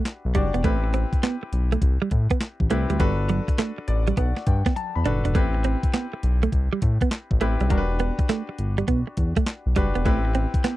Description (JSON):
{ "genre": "R&B, new jack swing", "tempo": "102 BPM", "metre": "4/4", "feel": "swing 66% on 16ths", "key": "unclear", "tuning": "A4 = 440 Hz", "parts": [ { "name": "clear concert grand piano", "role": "accompaniment", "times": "0.0-10.8 s", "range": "C4 to B5", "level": "-30 LUFS", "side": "left 4 dB", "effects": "none" }, { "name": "direct-recorded clean electric guitar", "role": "riff", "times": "0.1-10.8 s", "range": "F#3 to D4", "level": "-26 LUFS", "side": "right 6 dB", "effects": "analog chorus" }, { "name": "clean 12-bit digital drum machine", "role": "drums", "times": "0.1-10.8 s", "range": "handclaps, hi-hat, kick drum, snare drum, toms", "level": "-23 LUFS", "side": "equal", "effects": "overdrive" }, { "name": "smooth synth bass", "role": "bass", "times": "0.2-10.5 s", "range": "E1 to A2", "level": "-23 LUFS", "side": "equal", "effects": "none" } ], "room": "little or no reverb", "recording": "dry, close 1970s-style studio recording", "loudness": "-21 LUFS", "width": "side -16 dB against mid", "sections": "0.0-10.8 A section", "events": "grand piano fill 3.6-5.3; drum fill 4.8-5.3", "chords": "0.0 Em7; 0.6 Am9; 3.0 Gmaj7; 5.3 Am9; 7.7 Em7; 10.1 Am9" }